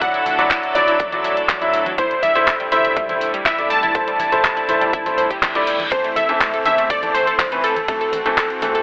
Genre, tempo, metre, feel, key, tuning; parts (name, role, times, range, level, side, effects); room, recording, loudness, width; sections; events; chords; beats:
progressive house; 122 BPM; 4/4; straight; A4 = 440 Hz
plucky unison lead; melody; 0.0-8.8 s; A4 to A5; -19 LUFS; equal; sidechain pumping, digital delay
rich studio string section; sustained chords; 0.0-8.8 s; C3 to A4; -26 LUFS; equal; sidechain pumping
analog pluck; arpeggios; 0.0-8.8 s; F#3 to C5; -26 LUFS; equal; chorus, sidechain pumping, tape echo
bright grand piano; stabs; 0.0-8.8 s; E3 to E5; -20 LUFS; equal; sidechain pumping, tape echo
electronic kick drum; drums; 0.0-8.5 s; -25 LUFS; equal
house drum kit; drums; 0.0-8.8 s; handclaps, hi-hat, ride cymbal; -22 LUFS; equal; sidechain pumping on hats, sidechain pumping on cymbals
round analog bass; bass; 0.3-8.8 s; G1 to E2; -41 LUFS; equal; sidechain pumping
congas; percussion; 0.3-8.7 s; -41 LUFS; equal; sidechain pumping on perc
reverse cymbal; sound effects; 5.3-5.9 s; -28 LUFS; left 1 dB
light reverb; telephone sound; -15 LUFS; side -28 dB against mid
0.0-8.8 A section
reverse cymbal 5.3-5.9
0.0 Dadd9; 2.0 C6; 5.9 Am
| 0.01 0.51 1.00 1.49 | 1.98 2.47 2.97 3.46 | 3.95 4.44 4.93 5.42 | 5.92 6.41 6.90 7.39 | 7.88 8.38